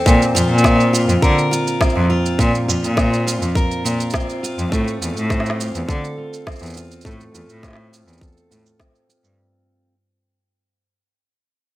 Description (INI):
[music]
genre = folktronica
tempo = 103 BPM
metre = 4/4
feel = straight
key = F major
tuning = A4 = 440 Hz
[part]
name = picked steel-string acoustic guitar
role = arpeggios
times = 0.0-9.9 s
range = Bb2 to Bb4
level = -21 LUFS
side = equal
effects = low-pass filter, tape echo
[part]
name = bright cello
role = bass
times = 0.1-9.3 s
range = E2 to D3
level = -18 LUFS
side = equal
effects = none
[part]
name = electronic kick drum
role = drums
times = 0.1-8.9 s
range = none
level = -18 LUFS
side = equal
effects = none
[part]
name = electronic shaker and snare drum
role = drums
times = 0.1-9.4 s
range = none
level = -25 LUFS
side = right 2 dB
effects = none
[sound]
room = studio reverb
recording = none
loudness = -15 LUFS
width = side -16 dB against mid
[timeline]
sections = 0.1-9.4 A section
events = fade-out 0.1-9.4; filter sweep on steel-string acoustic guitar 0.1-9.4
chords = 0.1 Bbsus2; 4.7 F